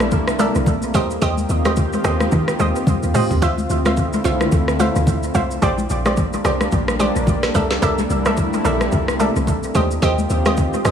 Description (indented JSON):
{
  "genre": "amapiano",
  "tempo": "109 BPM",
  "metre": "4/4",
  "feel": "swing 58% on 16ths",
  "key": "unclear",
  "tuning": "A4 = 440 Hz",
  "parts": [
    { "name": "lush unison pad", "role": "sustained chords", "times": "0.0-10.9 s", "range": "C3 to G4", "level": "-23 LUFS", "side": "equal", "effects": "chorus, sidechain pumping" },
    { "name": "deep log drum bass", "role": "bass", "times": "0.0-10.9 s", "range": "Bb1 to Eb3", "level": "-22 LUFS", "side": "equal", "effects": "none" },
    { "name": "smooth R&B drum kit", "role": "drums", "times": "0.0-10.9 s", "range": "hi-hat, kick drum, rim click, shaker, snare drum, toms", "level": "-22 LUFS", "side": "equal", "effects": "vintage 12-bit sampler grit, dub echo" },
    { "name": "congas", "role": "percussion", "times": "0.0-10.9 s", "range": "none", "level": "-25 LUFS", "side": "left 3 dB", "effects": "dub echo" },
    { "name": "analog pluck", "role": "stabs", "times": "0.4-10.9 s", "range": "F4 to E5", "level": "-22 LUFS", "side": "right 3 dB", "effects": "chorus, dub echo" }
  ],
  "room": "light reverb, digital ambience",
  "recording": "echo-heavy mix, studio reverb",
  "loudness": "-16 LUFS",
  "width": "side -8 dB against mid",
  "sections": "0.0-10.9 A section",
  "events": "drum fill 2.9-3.4",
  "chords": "0.0 C13; 0.9 Eb6; 3.4 Dm9; 5.6 Bb69; 7.5 C13; 9.8 Eb6"
}